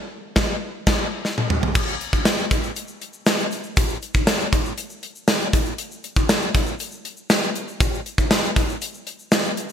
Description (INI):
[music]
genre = pop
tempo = 119 BPM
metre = 4/4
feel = straight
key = none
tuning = none
[part]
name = gated 80s drum kit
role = drums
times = 0.4-9.7 s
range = crash cymbal, hi-hat, kick drum, snare drum, tambourine, toms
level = -19 LUFS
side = equal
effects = gated reverb
[part]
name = egg shaker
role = percussion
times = 1.7-9.7 s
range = none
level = -40 LUFS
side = left 3 dB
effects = none
[sound]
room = moderate lush hall reverb, RT60 1.7 s, small room ambience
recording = bright 1980s-style digital production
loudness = -19 LUFS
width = side -8 dB against mid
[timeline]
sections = 0.0-1.8 A section; 1.8-9.7 B section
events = band accent 0.0-1.8; drum fill 1.2-1.8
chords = none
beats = 0.24 0.74 1.25 | 1.75 2.26 2.76 3.27 | 3.77 4.27 4.78 5.28 | 5.79 6.29 6.79 7.30 | 7.80 8.31 8.81 9.32